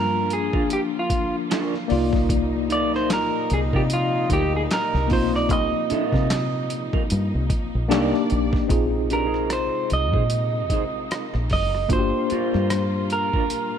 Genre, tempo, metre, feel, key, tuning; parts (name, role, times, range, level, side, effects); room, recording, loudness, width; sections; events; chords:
R&B, neo-soul; 75 BPM; 4/4; swing 58% on 16ths; C minor; A4 = 440 Hz
electric guitar through a small old amp; melody; 0.0-13.8 s; F4 to Eb5; -25 LUFS; right 2 dB
tine electric piano; accompaniment; 0.0-13.8 s; F3 to D5; -26 LUFS; left 3 dB; medium stereo tremolo
rich studio string section; sustained chords; 0.0-13.8 s; Bb2 to D5; -34 LUFS; left 1 dB
deep dub fingered electric bass; bass; 0.0-13.3 s; F#1 to C3; -25 LUFS; equal
boom bap sampler-style drum kit; drums; 0.3-13.7 s; handclaps, hi-hat, kick drum, rim click, snare drum; -26 LUFS; equal
electric guitar through a small old amp; second line; 0.5-13.4 s; D4 to D5; -30 LUFS; right 4 dB
mellow horn section; stabs; 2.3-8.3 s; Bb2 to Eb4; -32 LUFS; left 4 dB
light reverb; -20 LUFS; side -8 dB against mid
0.0-8.7 A section; 8.7-13.8 B section
clean electric guitar solo 0.0-8.7
0.0 Gm7; 1.9 Cm11; 7.9 Cm9; 8.7 Bb9sus4; 11.9 Gm7